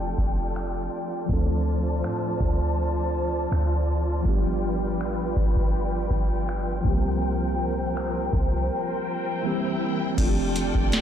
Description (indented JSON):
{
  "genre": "contemporary R&B",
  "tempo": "81 BPM",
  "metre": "4/4",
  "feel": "swing 54% on 16ths",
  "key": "F major",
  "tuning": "A4 = 440 Hz",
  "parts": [
    { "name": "mellow tine electric piano", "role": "accompaniment", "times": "0.0-11.0 s", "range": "E3 to A4", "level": "-29 LUFS", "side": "equal", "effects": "medium stereo tremolo" },
    { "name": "dark studio string section", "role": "sustained chords", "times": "0.0-11.0 s", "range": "E4 to A5", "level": "-29 LUFS", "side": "equal", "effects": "none" },
    { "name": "clean 808-style bass", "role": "bass", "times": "0.0-11.0 s", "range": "F1 to A2", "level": "-27 LUFS", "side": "equal", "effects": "transformer saturation" },
    { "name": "booming analog drum machine", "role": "drums", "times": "0.2-11.0 s", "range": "crash cymbal, finger snaps, hi-hat, kick drum, snare drum", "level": "-26 LUFS", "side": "equal", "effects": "soft clipping on snare" }
  ],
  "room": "light reverb",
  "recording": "blown-out, overdriven recording, overdrive, low-pass filter",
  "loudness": "-23 LUFS",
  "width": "side -9 dB against mid",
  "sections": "0.0-10.2 A section",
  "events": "filter sweep 0.0-10.2; drums muted 8.7-10.2",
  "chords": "0.0 F69; 1.3 Dm7; 4.3 G7; 6.8 C7sus4; 9.4 C7; 10.2 F69"
}